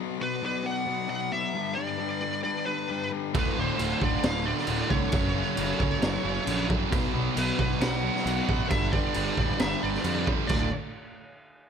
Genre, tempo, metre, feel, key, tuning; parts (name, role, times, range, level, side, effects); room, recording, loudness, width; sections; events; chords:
quiet-loud alternative rock; 134 BPM; 4/4; straight; A4 = 445 Hz
clear studio string section; sustained chords; 0.0-10.7 s; D3 to D5; -41 LUFS; right 1 dB
fuzz guitar; riff; 0.0-10.7 s; D2 to F4; -32 LUFS; left 10 dB; distortion
high-gain lead guitar; melody; 0.2-10.7 s; B4 to F#5; -32 LUFS; right 1 dB; distortion
distorted electric guitar; riff; 3.3-10.7 s; D2 to B3; -31 LUFS; right 12 dB; overdrive
raw garage drum kit; drums; 3.3-10.6 s; crash cymbal, kick drum, snare drum; -29 LUFS; right 1 dB
fuzz picked electric bass; bass; 3.4-10.7 s; D1 to F2; -31 LUFS; equal; overdrive
light reverb; -25 LUFS; side -7 dB against mid
0.0-10.5 A section; 10.5-11.7 B section
0.0 Bm; 1.5 G; 3.3 Dm; 5.1 F#m; 6.9 Bm; 8.7 G; 10.5 Dm